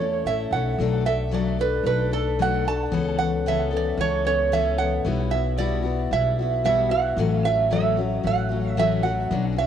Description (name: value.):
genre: acoustic folk duo or small band.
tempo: 112 BPM.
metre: 4/4.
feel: straight.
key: unclear.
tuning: A4 = 442 Hz.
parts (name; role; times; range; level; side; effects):
metal-body resonator slide guitar; melody; 0.0-9.7 s; A4 to A5; -24 LUFS; right 7 dB; analog delay.
picked steel-string acoustic guitar; accompaniment; 0.0-9.7 s; A2 to A4; -25 LUFS; left 7 dB; cassette tape.
upright bass; bass; 0.0-9.7 s; A1 to E2; -27 LUFS; equal; none.
room: wet spring reverb, RT60 2.8 s.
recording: home recording on cassette.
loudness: -20 LUFS.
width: side -9 dB against mid.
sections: 0.8-9.7 A section.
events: none.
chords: 0.0 A; 0.8 Bm7; 2.9 Aadd9/C#; 5.0 Emadd9/B; 7.2 A6.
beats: 0.24 | 0.78 1.31 1.84 2.38 | 2.91 3.44 3.98 4.51 | 5.04 5.58 6.11 6.64 | 7.18 7.71 8.24 8.78 | 9.31.